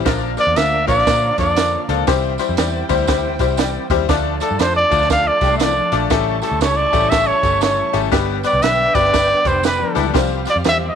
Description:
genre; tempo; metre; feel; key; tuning
uptempo 1960s-style soul; 119 BPM; 4/4; swing 63% on 8ths; unclear; A4 = 441 Hz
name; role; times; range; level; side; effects
percussive tonewheel organ; sustained chords; 0.0-11.0 s; C#3 to A4; -32 LUFS; right 16 dB; fast rotary speaker
dark studio string section; second line; 0.1-11.0 s; C4 to C#6; -28 LUFS; right 10 dB; none
bright upright piano; accompaniment; 0.1-10.9 s; F3 to D5; -21 LUFS; left 14 dB; none
vintage muted picked electric bass; bass; 0.1-10.9 s; F1 to Bb2; -23 LUFS; equal; none
compact cocktail drum kit; drums; 0.1-10.8 s; hi-hat, kick drum, snare drum; -21 LUFS; right 5 dB; none
tambourine; percussion; 0.1-10.8 s; none; -33 LUFS; right 16 dB; none
warm trumpet; melody; 0.4-11.0 s; A4 to F5; -17 LUFS; equal; tape echo
mellow electric guitar; riff; 5.4-6.1, 9.8-10.3 s; E3 to G4; -25 LUFS; left 13 dB; none
room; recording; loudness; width
moderate spring reverb, RT60 1.2 s, small room ambience; 1960s-style stereo with parts hard left and right; -14 LUFS; side -7 dB against mid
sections
0.0-11.0 A section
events
none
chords
0.1 Bb; 2.1 C; 4.1 Dm; 6.1 A7; 8.1 G; 10.1 Csus4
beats
| 0.06 0.56 1.07 1.57 | 2.08 2.58 3.08 3.59 | 4.09 4.60 5.10 5.61 | 6.11 6.62 7.12 7.62 | 8.13 8.63 9.14 9.64 | 10.14 10.65

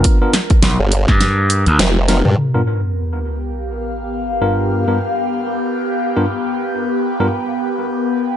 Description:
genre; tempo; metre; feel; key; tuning
glitch hop; 103 BPM; 4/4; swing 57% on 16ths; G minor pentatonic; A4 = 440 Hz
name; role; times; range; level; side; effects
bright tine electric piano; stabs; 0.0-7.3 s; G2 to A#4; -20 LUFS; equal; sidechain pumping, low-pass filter, tape echo
gritty slap bass; bass; 0.0-1.8 s; B1 to G2; -14 LUFS; equal; overdrive, tube saturation
electronic kick drum; drums; 0.0-1.2 s; none; -13 LUFS; equal; studio reverb
pop drum kit; drums; 0.0-2.4 s; hi-hat, shaker, snare drum, toms; -18 LUFS; equal; low-pass filter on snare, studio reverb, low-pass filter on hats, low-pass filter on perc, low-pass filter on toms
airy breathy pad; texture; 0.0-8.4 s; B3 to G5; -21 LUFS; left 1 dB; chorus, phaser, sidechain pumping
formant-sweep wobble bass; bass; 0.8-2.4 s; F1 to G2; -14 LUFS; equal; chorus
sub drop; sound effects; 2.4-4.7 s; none; -21 LUFS; equal; none
room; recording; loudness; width
light reverb, digital ambience; nothing above 10.6 kHz; -14 LUFS; side -10 dB against mid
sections
0.0-2.4 A section; 2.4-8.4 B section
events
band accent 1.8; drum fill 2.1; impact 2.4-4.7; filter sweep on tine electric piano 2.4-8.4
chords
0.0 G7#9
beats
| 0.05 0.63 1.21 1.80 | 2.38 2.96 3.54 4.13 | 4.71 5.29 5.87 6.46 | 7.04 7.62 8.20

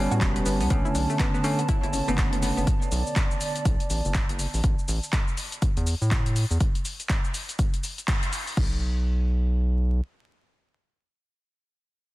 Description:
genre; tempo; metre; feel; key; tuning
deep house; 122 BPM; 4/4; swing 60% on 16ths; unclear; A4 = 440 Hz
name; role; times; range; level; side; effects
dark analog pad; sustained chords; 0.0-4.6 s; D3 to A5; -32 LUFS; right 2 dB; chorus, sidechain pumping
analog pluck; arpeggios; 0.0-2.6 s; A3 to B4; -32 LUFS; equal; chorus, phaser, sidechain pumping, tape echo
bell-like tine electric piano; stabs; 0.0-2.6 s; D3 to C#4; -28 LUFS; equal; sidechain pumping, tape echo
round analog bass; bass; 0.0-10.0 s; E1 to A2; -25 LUFS; equal; sidechain pumping
punchy analog drum machine; drums; 0.1-8.7 s; crash cymbal, handclaps, hi-hat, shaker; -32 LUFS; left 1 dB; none
electronic kick drum; drums; 0.2-8.7 s; none; -25 LUFS; equal; none
room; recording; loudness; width
light reverb, digital ambience; dense, heavily limited modern master, vinyl crackle; -23 LUFS; side -18 dB against mid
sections
0.0-8.6 A section; 8.6-12.1 B section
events
drop 0.0-8.6; band accent 8.1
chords
0.0 A9; 0.7 Bm9; 4.6 A5; 8.6 N.C.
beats
0.21 | 0.70 1.20 1.69 2.18 | 2.67 3.16 3.65 4.15 | 4.64 5.13 5.62 6.11 | 6.61 7.10 7.59 8.08 | 8.57 9.06 9.56

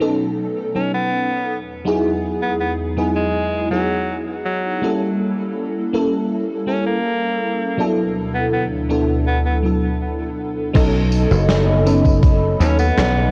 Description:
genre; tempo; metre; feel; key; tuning
vaporwave; 81 BPM; 4/4; straight; unclear; A4 = 440 Hz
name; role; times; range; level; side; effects
FM electric piano with soft pad layer; accompaniment; 0.0-13.3 s; F#3 to A4; -23 LUFS; equal; phaser, ensemble chorus, cassette tape, tape echo
warbly tape-like pad; sustained chords; 0.0-13.3 s; D2 to B5; -28 LUFS; equal; chorus, built-in reverb
edgy alto saxophone; melody; 0.8-13.3 s; F#3 to C#4; -26 LUFS; equal; tape echo
dry thumbed slap bass; bass; 10.8-13.3 s; F#1 to D#2; -19 LUFS; equal; tube saturation
electronic kick drum; drums; 10.8-12.4 s; none; -16 LUFS; equal; overdrive
huge arena drum kit; drums; 10.8-13.1 s; crash cymbal, hi-hat, snare drum, tambourine; -28 LUFS; equal; none
room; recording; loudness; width
light reverb, small room reverb; worn, warbling old tape, cassette tape, warbly pitch drift; -19 LUFS; mono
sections
0.0-10.8 A section; 10.8-13.3 B section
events
filter sweep on ambient pad 0.0-10.8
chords
0.0 B9; 1.5 Emaj9; 4.8 A7b9; 7.8 D69; 10.8 B9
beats
0.38 1.12 | 1.86 2.60 3.34 4.08 | 4.83 5.57 6.31 7.05 | 7.79 8.53 9.27 10.01 | 10.75 11.49 12.23 12.97

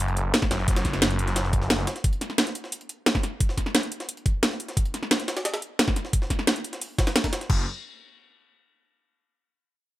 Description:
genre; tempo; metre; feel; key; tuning
dark technical drum and bass; 176 BPM; 4/4; straight; unclear; A4 = 440 Hz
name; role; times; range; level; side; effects
snarling distorted saw bass; bass; 0.0-1.9, 7.5-7.7 s; F#1; -26 LUFS; equal; distortion, tube saturation, sidechain pumping
drum and bass drum kit; drums; 0.0-7.6 s; crash cymbal, hi-hat, snare drum; -25 LUFS; equal; none
jungle sampler-style drum kit; drums; 0.0-7.5 s; hi-hat, snare drum; -32 LUFS; equal; overdrive, high-pass filter on snare, high-pass filter on hats
electronic kick drum; drums; 0.4-7.6 s; none; -24 LUFS; equal; none
room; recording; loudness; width
digital ambience; none; -23 LUFS; side -15 dB against mid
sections
0.0-7.5 A section; 7.5-8.9 B section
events
none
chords
none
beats
0.00 0.34 | 0.68 1.02 1.36 1.70 | 2.04 2.38 2.72 3.06 | 3.40 3.75 4.09 4.43 | 4.77 5.11 5.45 5.79 | 6.13 6.47 6.81 7.16 | 7.50

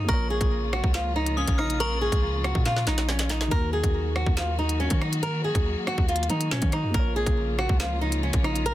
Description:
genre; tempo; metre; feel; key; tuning
hip hop, drill; 140 BPM; 4/4; half-time; Eb minor; A4 = 440 Hz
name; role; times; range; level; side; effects
flamenco guitar; melody; 0.0-8.7 s; Db4 to Bb4; -28 LUFS; equal; none
metallic FM bell; second line; 0.0-2.6 s; Db6 to F6; -35 LUFS; left 4 dB; chorus, digital delay
dark grand piano; accompaniment; 0.0-8.7 s; Eb3 to Db5; -37 LUFS; equal; none
warm symphonic string section; sustained chords; 0.0-8.7 s; Db3 to Gb4; -34 LUFS; left 2 dB; none
long sustained 808-style bass; bass; 0.0-8.7 s; Bb1 to Eb3; -28 LUFS; equal; none
drill drum kit; drums; 0.1-8.7 s; hi-hat, kick drum, rim click, snare drum; -26 LUFS; equal; none
room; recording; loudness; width
small room ambience; dense, heavily limited modern master; -22 LUFS; side -14 dB against mid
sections
0.0-3.5 A section; 3.5-8.7 A section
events
drum fill 2.7-3.5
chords
0.1 Bbm; 3.5 Ebm; 6.9 Bbm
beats
| 0.09 0.52 0.94 1.37 | 1.80 2.23 2.66 3.09 | 3.52 3.94 4.37 4.80 | 5.23 5.66 6.09 6.51 | 6.94 7.37 7.80 8.23 | 8.66

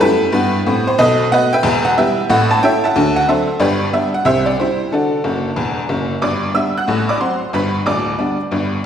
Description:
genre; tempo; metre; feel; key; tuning
jazz, stride piano; 183 BPM; 4/4; swing 65% on 8ths; G major; A4 = 440 Hz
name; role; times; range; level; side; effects
tack piano; solo; 0.0-8.8 s; D1 to F#6; -14 LUFS; equal; none
room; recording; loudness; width
wet recital hall reverb, RT60 1.7 s; recorded in a church or concert hall; -14 LUFS; side -8 dB against mid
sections
0.0-6.2 A section; 6.2-8.9 A section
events
honky-tonk piano fill 5.2-6.2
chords
0.0 Em; 1.0 B7; 1.6 Em; 2.3 A; 2.9 D9; 3.6 G; 4.3 C; 4.9 D; 6.2 G; 6.9 F#dim/A; 7.5 G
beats
0.00 0.33 0.66 | 0.99 1.31 1.64 1.97 | 2.29 2.62 2.95 3.28 | 3.60 3.93 4.26 4.58 | 4.91 5.24 5.56 5.89 | 6.22 6.54 6.87 7.20 | 7.53 7.85 8.18 8.51

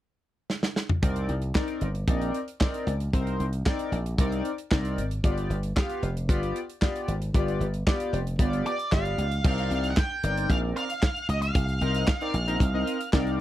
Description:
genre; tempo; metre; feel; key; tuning
early-eighties boogie funk; 114 BPM; 4/4; straight; C minor; A4 = 441 Hz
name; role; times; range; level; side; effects
modern studio drum kit; drums; 0.5-13.4 s; crash cymbal, handclaps, hi-hat, kick drum, snare drum, toms; -25 LUFS; equal; none
chorused polysynth; accompaniment; 1.0-13.4 s; B3 to F5; -31 LUFS; left 2 dB; none
dry thumbed slap bass; bass; 1.0-13.4 s; F1 to Db2; -28 LUFS; equal; none
octave-fuzz lead guitar; melody; 8.7-13.4 s; D5 to G5; -30 LUFS; right 1 dB; distortion, slapback echo
room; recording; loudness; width
little or no reverb; dry, close 1970s-style studio recording; -24 LUFS; side -13 dB against mid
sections
0.0-1.0 A section; 1.0-9.4 B section; 9.4-13.4 C section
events
drum fill 0.5-1.0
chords
0.0 N.C.; 1.0 Cm9; 5.2 G7; 9.4 Cm9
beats
0.50 | 1.03 1.55 2.08 2.60 | 3.13 3.66 4.18 4.71 | 5.24 5.76 6.29 6.82 | 7.34 7.87 8.39 8.92 | 9.45 9.97 10.50 11.03 | 11.55 12.08 12.61 13.13

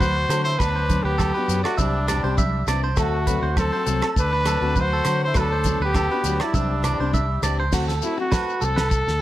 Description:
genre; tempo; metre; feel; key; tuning
highlife guitar band; 101 BPM; 4/4; swing 54% on 16ths; D mixolydian; A4 = 440 Hz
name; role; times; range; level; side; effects
breathy trumpet; melody; 0.0-9.2 s; D4 to C5; -25 LUFS; equal; slapback echo
raspy tenor saxophone; second line; 0.0-7.5 s; G3 to F#4; -32 LUFS; left 7 dB; none
picked steel-string acoustic guitar; accompaniment; 0.0-8.8 s; E3 to G4; -31 LUFS; left 7 dB; none
clean electric guitar; arpeggios; 0.0-8.9 s; F#4 to E5; -28 LUFS; right 4 dB; slapback echo
fingered electric bass; bass; 0.0-9.2 s; C2 to D3; -24 LUFS; equal; none
damped 70s drum kit; drums; 0.0-9.1 s; crash cymbal, hi-hat, kick drum, rim click, snare drum; -24 LUFS; equal; none
congas; percussion; 0.0-9.0 s; none; -30 LUFS; right 3 dB; none
shekere; percussion; 0.0-9.1 s; none; -34 LUFS; left 6 dB; none
agogo bells; percussion; 0.3-8.9 s; none; -34 LUFS; right 10 dB; none
room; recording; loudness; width
studio reverb; none; -19 LUFS; side -14 dB against mid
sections
0.0-7.7 A section; 7.7-9.2 B section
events
none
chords
0.0 D7; 1.8 Cadd9; 3.0 D7; 5.4 Gmaj7/D; 6.5 Cadd9; 7.7 D7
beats
0.00 | 0.60 1.19 1.79 2.38 | 2.98 3.57 4.17 4.76 | 5.36 5.95 6.55 7.14 | 7.73 8.33 8.92

